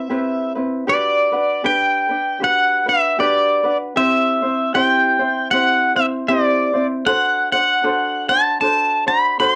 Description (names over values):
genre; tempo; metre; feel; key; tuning
hawaiian; 77 BPM; 4/4; swing 59% on 8ths; G major; A4 = 440 Hz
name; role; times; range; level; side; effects
pedal steel guitar; melody; 0.0-9.6 s; D5 to C6; -18 LUFS; equal; cassette tape
ukulele; accompaniment; 0.0-9.6 s; C4 to C5; -24 LUFS; equal; none
room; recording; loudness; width
moderate small room reverb, RT60 0.5 s; home recording on cassette; -17 LUFS; mono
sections
0.9-9.6 A section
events
none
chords
0.0 Cmaj7; 0.9 Gmaj7; 4.0 C; 7.1 D7